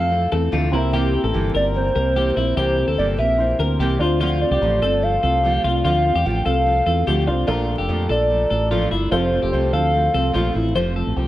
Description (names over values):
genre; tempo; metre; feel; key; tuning
indie pop; 147 BPM; 4/4; straight; F major; A4 = 440 Hz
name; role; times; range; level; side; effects
warbly nostalgic lead; melody; 0.0-10.5 s; C5 to G5; -21 LUFS; right 1 dB; chorus
clear upright piano; accompaniment; 0.0-10.8 s; C4 to C5; -29 LUFS; right 2 dB; none
fingerpicked steel-string acoustic guitar; accompaniment; 0.0-11.3 s; F2 to A4; -25 LUFS; right 3 dB; none
twelve-string electric guitar; arpeggios; 0.0-11.3 s; E4 to C5; -24 LUFS; left 6 dB; digital delay
fingered electric bass; bass; 0.0-11.3 s; F1 to F2; -21 LUFS; equal; none
room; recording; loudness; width
studio ambience; vinyl crackle; -17 LUFS; side -14 dB against mid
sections
0.0-10.8 A section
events
none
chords
0.0 Fmaj7; 0.7 C7; 4.0 Dm7; 7.5 Bbmaj7; 9.1 F